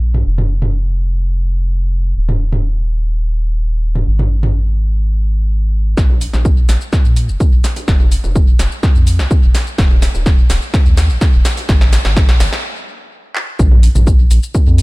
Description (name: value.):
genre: melodic techno.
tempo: 126 BPM.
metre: 4/4.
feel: straight.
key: unclear.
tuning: A4 = 439 Hz.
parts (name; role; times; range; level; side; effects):
round analog bass; bass; 0.0-14.8 s; Eb1 to Bb2; -14 LUFS; equal; sidechain pumping.
techno drum kit; drums; 0.1-14.8 s; handclaps, hi-hat, shaker, snare drum, toms; -21 LUFS; equal; high-pass filter on toms, low-pass filter on toms, high-pass filter on snare, low-pass filter on snare, high-pass filter on perc, low-pass filter on perc, high-pass filter on hats, low-pass filter on hats, high-pass filter on room, low-pass filter on room.
electronic kick drum; drums; 6.0-14.6 s; none; -11 LUFS; equal; none.
room: little or no reverb.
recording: echo-heavy mix.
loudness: -11 LUFS.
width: side -23 dB against mid.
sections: 0.0-6.0 A section; 6.0-13.6 B section; 13.6-14.8 C section.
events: build-up 6.0-13.6; drum fill 6.0-12.6, 13.4; stop 12.6-13.6; drop 13.6-14.8.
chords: none.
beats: | 0.26 0.74 1.21 1.69 | 2.17 2.64 3.12 3.59 | 4.07 4.55 5.02 5.50 | 5.97 6.45 6.93 7.40 | 7.88 8.36 8.83 9.31 | 9.78 10.26 10.74 11.21 | 11.69 12.16 12.64 13.12 | 13.59 14.07 14.55.